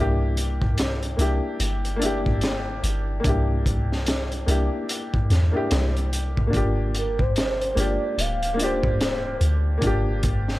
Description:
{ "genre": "trip hop", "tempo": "73 BPM", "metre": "4/4", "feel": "swing 60% on 16ths", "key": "unclear", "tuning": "A4 = 440 Hz", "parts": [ { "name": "warm upright piano", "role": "accompaniment", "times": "0.0-10.6 s", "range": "Bb3 to G4", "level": "-27 LUFS", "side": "left 1 dB", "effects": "harmonic tremolo, tape echo" }, { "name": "soft 808-style bass", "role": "bass", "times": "0.0-10.6 s", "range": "D1 to E2", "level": "-24 LUFS", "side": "equal", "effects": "none" }, { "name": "crunchy breakbeat drum kit", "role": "drums", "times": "0.4-10.6 s", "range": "hi-hat, kick drum, snare drum", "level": "-25 LUFS", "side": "equal", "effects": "none" }, { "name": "pure breathy sine lead", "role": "melody", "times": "7.0-9.4 s", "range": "Bb4 to F5", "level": "-28 LUFS", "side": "right 1 dB", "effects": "chorus, tape echo" } ], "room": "little or no reverb", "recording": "none", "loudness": "-21 LUFS", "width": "side -17 dB against mid", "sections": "0.0-10.6 A section", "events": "none", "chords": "0.0 C7; 6.5 Gm7" }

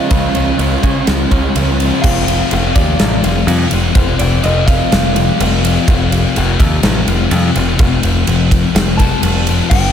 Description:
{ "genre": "rock, shoegaze and dream pop", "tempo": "125 BPM", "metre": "4/4", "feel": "straight", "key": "unclear", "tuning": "A4 = 436 Hz", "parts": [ { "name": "electric guitar through a small old amp", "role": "melody", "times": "0.0-5.6, 9.0-9.9 s", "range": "C5 to A5", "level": "-22 LUFS", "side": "right 1 dB", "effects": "ping-pong delay" }, { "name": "overdriven semi-hollow guitar", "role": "riff", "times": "0.0-2.0 s", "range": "Db3 to Db5", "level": "-22 LUFS", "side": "right 6 dB", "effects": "reverse reverb" }, { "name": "thick fuzz guitar", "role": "riff", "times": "0.0-9.9 s", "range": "F2 to Db4", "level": "-16 LUFS", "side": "left 7 dB", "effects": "distortion, lush chorus" }, { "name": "modern bright picked electric bass", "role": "bass", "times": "0.1-9.9 s", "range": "F1 to Db3", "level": "-16 LUFS", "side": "right 1 dB", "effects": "none" }, { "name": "huge arena drum kit", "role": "drums", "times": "0.1-9.8 s", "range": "crash cymbal, kick drum, ride cymbal, snare drum", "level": "-15 LUFS", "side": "equal", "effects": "none" } ], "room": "moderate huge ambient reverb, RT60 7.7 s", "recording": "dreamy mix soaked in reverb", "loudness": "-11 LUFS", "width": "side -9 dB against mid", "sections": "0.0-2.0 A section; 2.0-9.9 B section", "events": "none", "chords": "0.0 Db; 2.0 F5" }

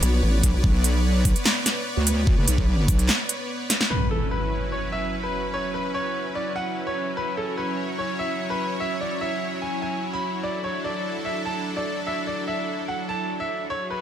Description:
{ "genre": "heavy wobble dubstep", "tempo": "147 BPM", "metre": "4/4", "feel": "half-time", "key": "unclear", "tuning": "A4 = 438 Hz", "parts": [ { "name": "supersaw pad", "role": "sustained chords", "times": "0.0-14.0 s", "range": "F#3 to D5", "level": "-29 LUFS", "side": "equal", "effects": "sidechain pumping" }, { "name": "vowel-sweep wobble bass", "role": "bass", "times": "0.0-0.6 s", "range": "A1 to B1", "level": "-20 LUFS", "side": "equal", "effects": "chorus, overdrive" }, { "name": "big-room dance drum kit", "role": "drums", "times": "0.0-3.9 s", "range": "handclaps, hi-hat, snare drum", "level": "-22 LUFS", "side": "equal", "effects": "none" }, { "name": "wobble bass", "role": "bass", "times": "0.4-3.1 s", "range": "F#1 to D2", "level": "-21 LUFS", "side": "equal", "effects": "chorus, overdrive" }, { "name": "electronic kick drum", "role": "drums", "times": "0.4-3.0 s", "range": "none", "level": "-21 LUFS", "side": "equal", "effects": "overdrive" }, { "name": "bright grand piano", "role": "melody", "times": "3.9-14.0 s", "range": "A4 to B5", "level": "-28 LUFS", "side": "equal", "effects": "tape echo" }, { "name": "impact", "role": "sound effects", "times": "3.9-5.5 s", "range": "none", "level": "-28 LUFS", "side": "equal", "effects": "none" } ], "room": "light reverb, digital ambience", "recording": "none", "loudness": "-22 LUFS", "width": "side -10 dB against mid", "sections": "0.0-3.9 A section; 3.9-14.0 B section", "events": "drop 0.0-3.9; break 3.1-3.9; drum fill 3.7; impact 3.9-5.5", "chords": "0.0 Bmadd9; 3.9 C#m7/F#; 10.4 Dadd9/F#" }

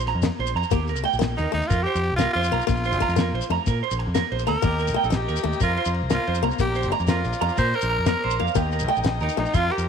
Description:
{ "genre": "highlife guitar band", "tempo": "122 BPM (dotted quarters)", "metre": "12/8", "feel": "straight", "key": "Bb major", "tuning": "A4 = 439 Hz", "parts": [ { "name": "fingered electric bass", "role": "bass", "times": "0.0-9.9 s", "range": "G1 to Bb2", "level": "-26 LUFS", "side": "equal", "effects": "none" }, { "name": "clean electric guitar", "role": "arpeggios", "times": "0.1-9.8 s", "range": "F4 to Bb5", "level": "-27 LUFS", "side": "right 11 dB", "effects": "slapback echo" }, { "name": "cloth-damped thuddy drum kit", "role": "drums", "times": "0.1-9.8 s", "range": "kick drum, ride cymbal, snare drum", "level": "-29 LUFS", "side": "equal", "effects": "none" }, { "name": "fingerpicked swing-style acoustic guitar", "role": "accompaniment", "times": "0.2-9.6 s", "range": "A3 to C4", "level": "-29 LUFS", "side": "left 12 dB", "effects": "none" }, { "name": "shekere", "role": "percussion", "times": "0.2-9.9 s", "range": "none", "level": "-30 LUFS", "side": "left 6 dB", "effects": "none" }, { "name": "growling tenor saxophone", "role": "melody", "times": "1.4-9.9 s", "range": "Eb4 to C5", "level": "-26 LUFS", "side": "equal", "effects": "none" }, { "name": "combo organ", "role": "sustained chords", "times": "4.6-9.9 s", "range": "C5 to Bb5", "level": "-33 LUFS", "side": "left 11 dB", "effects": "none" } ], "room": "light reverb, small room ambience", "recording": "1960s-style stereo with parts hard left and right", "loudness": "-20 LUFS", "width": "side -7 dB against mid", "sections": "0.0-9.9 A section", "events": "none", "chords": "0.0 Bbsus2; 0.7 Eb; 1.7 Fsus4; 2.7 Bbsus2; 4.6 Eb; 5.6 Fsus4; 6.6 Bbadd9; 8.6 Eb" }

